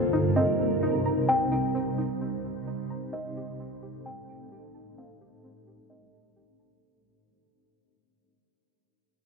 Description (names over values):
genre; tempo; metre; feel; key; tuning
hip hop; 130 BPM; 4/4; half-time; unclear; A4 = 441 Hz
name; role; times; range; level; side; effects
granular cloud pad; sustained chords; 0.0-6.8 s; A2 to C5; -28 LUFS; equal; built-in reverb, low-pass filter
string-like resonator pluck; arpeggios; 0.0-6.8 s; C4 to Bb5; -34 LUFS; right 2 dB; chorus, low-pass filter, tape echo
kalimba; melody; 0.4-6.8 s; Eb5 to G5; -29 LUFS; left 1 dB; low-pass filter, tape echo
room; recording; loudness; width
light reverb; none; -25 LUFS; side -4 dB against mid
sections
0.0-6.8 A section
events
fade-out 0.0-6.8; filter sweep 0.0-6.8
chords
0.0 Cm7; 3.1 Am7b5